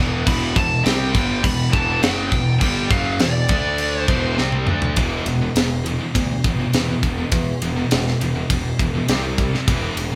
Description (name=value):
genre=heavy metal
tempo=102 BPM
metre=4/4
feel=straight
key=E minor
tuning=A4 = 440 Hz
part: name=scooped high-gain guitar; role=riff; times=0.0-10.2 s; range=E2 to D4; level=-28 LUFS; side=equal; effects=distortion
part: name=tight distorted guitar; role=riff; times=0.0-10.1 s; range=E2 to D4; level=-26 LUFS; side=equal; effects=distortion
part: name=fuzz picked electric bass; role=bass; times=0.0-10.2 s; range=E1 to E2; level=-27 LUFS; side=equal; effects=overdrive
part: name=high-gain lead guitar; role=melody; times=0.3-4.4 s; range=D5 to B5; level=-26 LUFS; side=equal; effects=distortion
part: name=tight metal drum kit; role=drums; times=0.3-10.1 s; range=crash cymbal, kick drum, ride cymbal, snare drum, toms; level=-24 LUFS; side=equal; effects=none
room=moderate large studio reverb, RT60 0.9 s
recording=band playing live in one room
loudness=-20 LUFS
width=mono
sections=0.0-5.0 A section; 5.0-10.2 B section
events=drum fill 4.4-5.0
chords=0.0 Em; 3.5 D5; 4.1 Em; 5.0 E5; 9.1 C5